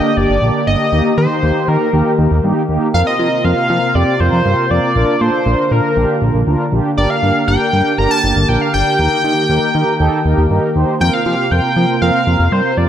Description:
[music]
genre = synth-pop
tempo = 119 BPM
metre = 4/4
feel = straight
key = unclear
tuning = A4 = 438 Hz
[part]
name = octave-doubled lead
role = melody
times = 0.0-12.9 s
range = Bb4 to Bb5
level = -17 LUFS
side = equal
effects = chorus
[part]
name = mellow synth brass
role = accompaniment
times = 0.0-12.9 s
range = Bb3 to C5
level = -18 LUFS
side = right 1 dB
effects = chorus
[part]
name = chorused pulse-width pad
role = sustained chords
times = 0.0-12.9 s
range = C3 to G4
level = -20 LUFS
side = equal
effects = none
[part]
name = fat analog bass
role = bass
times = 0.2-12.9 s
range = G1 to F3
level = -15 LUFS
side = equal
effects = none
[sound]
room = moderate lush hall reverb, RT60 3.0 s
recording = none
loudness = -12 LUFS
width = side -10 dB against mid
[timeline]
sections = 0.0-12.9 A section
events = none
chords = 0.0 Gm; 0.9 Eb; 2.9 Fsus4; 5.0 Bb; 7.0 Gm; 9.0 Eb; 11.0 Fsus4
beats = 0.42 | 0.92 1.43 1.93 2.44 | 2.94 3.44 3.95 4.45 | 4.96 5.46 5.97 6.47 | 6.97 7.48 7.98 8.49 | 8.99 9.50 10.00 10.50 | 11.01 11.51 12.02 12.52

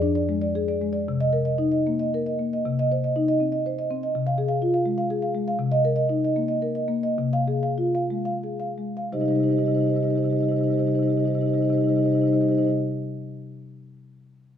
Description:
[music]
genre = classical, contemporary piece for solo marimba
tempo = 56-84 BPM (dotted quarters)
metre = 6/8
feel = rubato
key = C minor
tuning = A4 = 440 Hz
[part]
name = marimba with soft mallets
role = solo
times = 0.0-12.8 s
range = F2 to F5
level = -21 LUFS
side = left 1 dB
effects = none
[sound]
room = moderate recital hall reverb, RT60 1.5 s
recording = none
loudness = -21 LUFS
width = side -9 dB against mid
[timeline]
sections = 0.0-2.7 A section; 2.7-9.1 B section; 9.1-13.2 C section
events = slowing down 4.9-9.1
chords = 0.0 Fm6; 1.1 Cm7; 2.7 Cm; 4.1 Fm/C; 5.6 Cm7; 7.2 Ab6/C; 9.1 Cm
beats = 0.27 | 1.07 1.88 | 2.67 3.41 | 4.14 4.86 | 5.58 6.34 | 7.17 8.08 | 9.11 10.14 | 11.18 12.21

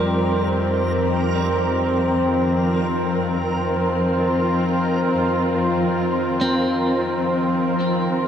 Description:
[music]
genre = ambient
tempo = free time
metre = none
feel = none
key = unclear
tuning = A4 = 442 Hz
[part]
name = muted studio string section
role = sustained chords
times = 0.0-8.3 s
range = Eb3 to Bb4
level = -21 LUFS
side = left 1 dB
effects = none
[part]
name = clean electric guitar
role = arpeggios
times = 0.0-0.8, 6.4-8.2 s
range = G3 to C4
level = -26 LUFS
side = left 1 dB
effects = dub echo
[part]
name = muted symphonic cello section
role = bass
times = 0.0-8.3 s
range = F2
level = -26 LUFS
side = equal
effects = none
[part]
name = organ-like drone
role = drone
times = 0.0-8.3 s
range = F3 to F4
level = -27 LUFS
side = left 2 dB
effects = ensemble chorus, built-in reverb, phaser
[part]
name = backwards swelling texture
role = texture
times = 0.0-7.8 s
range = Bb4 to Bb5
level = -28 LUFS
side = right 4 dB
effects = built-in reverb
[sound]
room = wet spring reverb, RT60 3.0 s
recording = echo-heavy mix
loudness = -18 LUFS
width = side -8 dB against mid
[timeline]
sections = 0.0-7.8 A section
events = none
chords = 0.0 F9sus4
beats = free time

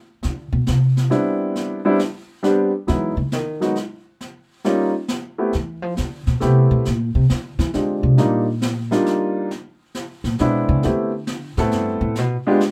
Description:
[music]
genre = jazz piano trio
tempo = 136 BPM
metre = 3/4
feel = swing 67% on 8ths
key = unclear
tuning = A4 = 439 Hz
[part]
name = upright bass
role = bass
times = 0.2-12.4 s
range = G2 to F3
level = -22 LUFS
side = equal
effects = none
[part]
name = brushed snare drum and snare drum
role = drums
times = 0.2-12.7 s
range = none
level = -31 LUFS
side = equal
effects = none
[part]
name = warm grand piano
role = melody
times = 1.1-12.6 s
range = F#3 to A4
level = -21 LUFS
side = equal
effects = none
[sound]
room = light reverb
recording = none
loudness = -20 LUFS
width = mono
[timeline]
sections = 0.0-2.9 A section; 2.9-12.7 A section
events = upright bass solo 0.0-12.7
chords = 0.2 Cmaj9; 2.9 Emaj9; 4.2 N.C.; 5.5 Fmaj9#11; 6.9 Bb13; 8.2 Ebmaj9; 9.5 E7b13; 10.8 Am9; 12.2 G7b9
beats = | 0.23 0.67 1.11 | 1.55 1.99 2.43 | 2.87 3.31 3.76 | 4.20 4.64 5.08 | 5.52 5.97 6.41 | 6.85 7.29 7.74 | 8.18 8.62 9.06 | 9.51 9.95 10.39 | 10.84 11.28 11.72 | 12.16 12.61

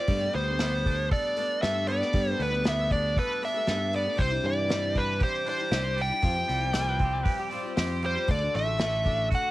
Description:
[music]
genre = folk rock and heartland rock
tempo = 117 BPM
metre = 4/4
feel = straight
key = G major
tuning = A4 = 438 Hz
[part]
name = dark smooth lead guitar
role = melody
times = 0.0-9.5 s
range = B4 to G5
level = -28 LUFS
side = equal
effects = overdrive
[part]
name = picked twelve-string acoustic guitar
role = accompaniment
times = 0.0-9.5 s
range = G2 to A4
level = -36 LUFS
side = left 7 dB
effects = none
[part]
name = twangy electric guitar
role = riff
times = 0.0-9.5 s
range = C3 to A4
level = -36 LUFS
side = right 7 dB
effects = none
[part]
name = picked electric bass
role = bass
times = 0.1-9.3 s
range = A1 to G2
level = -30 LUFS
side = equal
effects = tube saturation
[part]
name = unplugged drum kit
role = drums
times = 0.1-9.4 s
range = hi-hat, kick drum, snare drum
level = -29 LUFS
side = equal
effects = cassette tape
[part]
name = pedal steel guitar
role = second line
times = 6.7-8.0 s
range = G4 to D5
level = -40 LUFS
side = left 8 dB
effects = analog delay
[sound]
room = light reverb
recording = home recording on cassette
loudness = -24 LUFS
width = side -17 dB against mid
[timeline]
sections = 0.0-9.5 A section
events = none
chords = 0.1 Gadd9; 4.2 Cadd9; 6.2 Fsus2; 8.3 D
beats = | 0.08 0.60 1.11 1.62 | 2.13 2.65 3.16 3.67 | 4.18 4.70 5.21 5.72 | 6.23 6.74 7.25 7.77 | 8.28 8.79 9.30

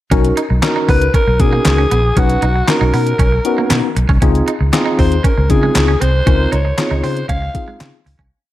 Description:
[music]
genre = early-eighties boogie funk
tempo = 117 BPM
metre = 4/4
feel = straight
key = B major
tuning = A4 = 440 Hz
[part]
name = tine electric piano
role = accompaniment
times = 0.1-8.0 s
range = B3 to B4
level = -19 LUFS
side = left 3 dB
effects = slow stereo tremolo
[part]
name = semi-hollow electric guitar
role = riff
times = 0.1-8.3 s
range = G#3 to D#4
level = -25 LUFS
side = right 5 dB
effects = lush chorus
[part]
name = vintage muted fingered electric bass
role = bass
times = 0.1-8.3 s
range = A#1 to C#3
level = -15 LUFS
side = equal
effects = none
[part]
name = detuned 8-bit digital drum machine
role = drums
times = 0.1-8.3 s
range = handclaps, hi-hat, kick drum, snare drum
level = -16 LUFS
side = equal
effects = overdrive
[part]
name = group handclap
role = percussion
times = 0.6-7.9 s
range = none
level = -26 LUFS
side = left 4 dB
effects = none
[part]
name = breathy alto saxophone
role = melody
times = 0.9-7.8 s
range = F#4 to E#5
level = -19 LUFS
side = equal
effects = tape echo
[sound]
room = light reverb, digital ambience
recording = none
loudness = -12 LUFS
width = side -14 dB against mid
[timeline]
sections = 0.1-8.3 verse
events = fade-out 6.3-8.3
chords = 0.1 Bmaj9; 4.2 C#maj9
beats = | 0.12 0.63 1.14 1.65 | 2.17 2.68 3.19 3.71 | 4.22 4.73 5.24 5.76 | 6.27 6.78 7.29 7.81

